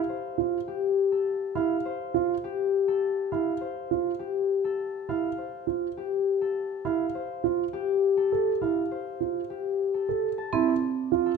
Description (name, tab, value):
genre	classical, minimalist pattern music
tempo	102 BPM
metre	3/4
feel	straight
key	F major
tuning	A4 = 440 Hz
part	concert harp	melody	0.0-11.4 s	G4 to A5	-28 LUFS	left 7 dB	none
part	dark grand piano	arpeggios	0.4-11.3 s	E4 to A4	-27 LUFS	right 11 dB	none
part	marimba with medium hard mallets	accompaniment	10.5-10.7 s	C4	-27 LUFS	right 7 dB	none
room	moderate recital hall reverb, RT60 1.7 s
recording	close, detailed microphones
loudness	-25 LUFS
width	side -5 dB against mid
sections	0.0-10.4 A section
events	none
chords	0.0 Fmaj9; 10.4 Fmaj7